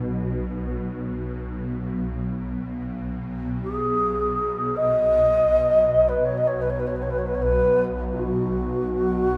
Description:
world meditative, free-time meditation music; free time; B major pentatonic; A4 = 440 Hz
swarming drone; drone; 0.0-9.4 s; B1 to B2; -30 LUFS; equal; built-in reverb
breathy bass flute; melody; 3.6-9.4 s; F#4 to D#5; -23 LUFS; equal; diffuse ambient delay
wet echo chamber reverb, RT60 2.0 s; -24 LUFS; mono
0.0-2.2 A section; 2.2-9.4 A section
free time

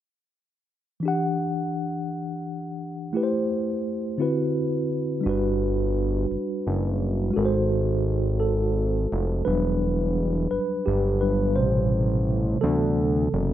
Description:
slow six-eight R&B; 57 BPM (dotted quarters); 6/8; straight; E minor; A4 = 440 Hz
mellow tine electric piano; accompaniment; 1.0-13.5 s; B2 to F#5; -24 LUFS; equal; medium stereo tremolo
fat analog bass; bass; 5.3-13.5 s; E1 to D2; -24 LUFS; equal
light reverb, digital ambience; nothing above 10.3 kHz; -22 LUFS; side -12 dB against mid
1.0-9.5 A section; 9.5-13.5 B section
tine electric piano solo 9.5-13.5
1.0 Em9; 3.1 Am7; 4.2 D13; 5.2 Gmaj7; 7.3 G#7b9; 9.5 Em9; 11.6 Am7; 12.6 D13
| 1.03 2.09 | 3.14 4.19 | 5.24 6.30 | 7.35 8.40 | 9.46 10.51 | 11.56 12.61

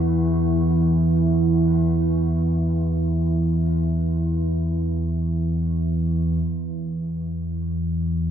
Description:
dark ambient drone; free time; A4 = 440 Hz
tubular bells; arpeggios; 0.0-6.5 s; F#4; -46 LUFS; left 2 dB; diffuse ambient delay
deep rumbling drone; drone; 0.0-8.3 s; E2 to E3; -20 LUFS; right 1 dB; built-in reverb
moderate huge ambient reverb, RT60 8.6 s; -20 LUFS; side -9 dB against mid
0.0-6.4 A section; 6.4-8.3 B section
0.0 Esus2; 6.4 N.C.
free time

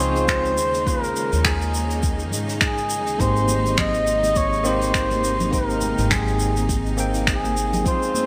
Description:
sunset chillout; 103 BPM; 4/4; swing 58% on 16ths; Ab major; A4 = 440 Hz
mellow flugelhorn; melody; 0.0-8.3 s; Ab4 to Eb5; -26 LUFS; equal; digital delay
bell-like tine electric piano; accompaniment; 0.0-8.3 s; Bb3 to G5; -30 LUFS; equal; digital delay
rich studio string section; sustained chords; 0.0-8.3 s; C3 to F4; -32 LUFS; equal
upright bass; bass; 0.0-7.8 s; Ab1 to Ab2; -28 LUFS; equal
vintage brush drum kit; drums; 0.2-8.3 s; finger snaps, hi-hat, shaker; -28 LUFS; equal; gated reverb
electronic kick drum; drums; 0.3-8.0 s; -28 LUFS; equal
congas; percussion; 3.5-8.3 s; -34 LUFS; equal
moderate lush hall reverb, RT60 2.7 s; bright 1980s-style digital production; -21 LUFS; mono
0.0-8.3 A section
0.0 Dbmaj7; 0.6 Eb7sus4; 3.2 Abmaj7
0.28 | 0.87 1.45 2.03 2.61 | 3.20 3.78 4.36 4.95 | 5.53 6.11 6.69 7.28 | 7.86

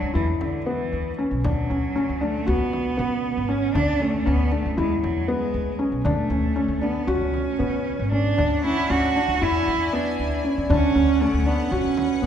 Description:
contemporary instrumental, chamber music in an uneven meter; 234 BPM (eighths); 9/8; straight; A4 = 439 Hz
rich cello; melody; 0.0-12.3 s; D3 to F#4; -25 LUFS; right 5 dB
felt-muted upright piano; arpeggios; 0.0-12.3 s; B3 to F#4; -25 LUFS; left 3 dB
upright bass; bass; 0.0-12.3 s; G#1 to C#3; -26 LUFS; equal
frame drum; percussion; 0.4-12.2 s; -32 LUFS; equal
rich studio string section; sustained chords; 8.4-12.3 s; D3 to G#5; -31 LUFS; left 3 dB
wet church reverb, RT60 3.8 s; recorded in a church or concert hall; -20 LUFS; side -9 dB against mid
0.0-12.3 A section
0.1 E5; 1.4 Dmaj7; 2.5 C#7sus4; 3.8 Bm9; 4.8 E7; 6.1 D5; 7.1 C#7sus4; 8.4 Dmaj7; 9.4 E7; 10.7 Dmaj7; 11.7 C#7sus4
0.15 0.41 0.67 0.93 1.19 | 1.45 1.70 1.96 2.22 2.47 2.73 2.98 3.24 3.50 | 3.75 4.01 4.27 4.52 4.78 5.04 5.29 5.54 5.80 | 6.05 6.31 6.57 6.83 7.08 7.34 7.60 7.86 8.12 | 8.38 8.64 8.90 9.16 9.42 9.68 9.93 10.19 10.45 | 10.70 10.96 11.21 11.47 11.72 11.98 12.23

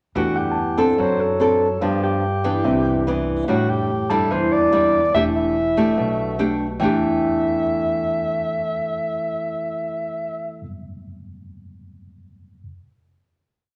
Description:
bossa nova; 145 BPM; 4/4; straight; E minor; A4 = 440 Hz
breathy alto saxophone; melody; 0.2-10.6 s; F#4 to E5; -25 LUFS; equal
nylon-string guitar; accompaniment; 0.2-10.7 s; G2 to A4; -23 LUFS; equal
upright bass; bass; 0.2-10.6 s; E1 to G2; -31 LUFS; equal
tine electric piano; accompaniment; 0.4-12.6 s; E5 to A5; -32 LUFS; equal
moderate large studio reverb, RT60 1.2 s; -20 LUFS; mono
0.2-6.8 A section; 6.8-10.1 final chord
0.2 Em11; 1.0 D7/F#; 1.8 G7; 2.7 Cmaj9; 3.5 A7sus4; 5.1 Em7
| 0.16 0.57 0.99 1.41 | 1.82 2.24 2.65 3.07 | 3.48 3.90 4.31 4.73 | 5.14 5.56 5.97 6.39 | 6.80 7.22 7.63 8.04 | 8.46 8.87 9.29 9.70

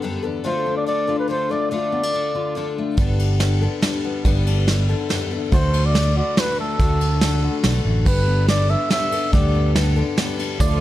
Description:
indie folk with a building arrangement; 142 BPM; 3/4; straight; G major; A4 = 440 Hz
fingerpicked steel-string acoustic guitar; accompaniment; 0.0-10.8 s; D2 to F#4; -27 LUFS; left 3 dB
picked twelve-string acoustic guitar; accompaniment; 0.0-10.8 s; D3 to A4; -27 LUFS; left 6 dB
mellow trumpet; melody; 0.5-2.7, 5.5-9.7 s; A4 to E5; -23 LUFS; equal
fingered electric bass; bass; 3.0-10.8 s; G1 to D2; -19 LUFS; right 1 dB
soft brush drum kit; drums; 3.0-10.7 s; crash cymbal, kick drum, ride cymbal, snare drum; -22 LUFS; right 1 dB
warm chamber string section; sustained chords; 10.6-10.8 s; D3 to F4; -29 LUFS; equal
bright upright piano; arpeggios; 10.6-10.8 s; D5; -25 LUFS; right 9 dB
tambourine; percussion; 10.6-10.8 s; -36 LUFS; right 5 dB
small room ambience; dark, warm production; -17 LUFS; side -14 dB against mid
0.0-8.1 A section; 8.1-10.8 B section
0.4 Dm; 3.0 Gadd9; 5.5 D; 8.1 Gadd9
0.02 | 0.44 0.86 1.29 | 1.71 2.13 2.56 | 2.98 3.40 3.83 | 4.25 4.67 5.10 | 5.52 5.95 6.37 | 6.79 7.22 7.64 | 8.06 8.49 8.91 | 9.33 9.76 10.18 | 10.60

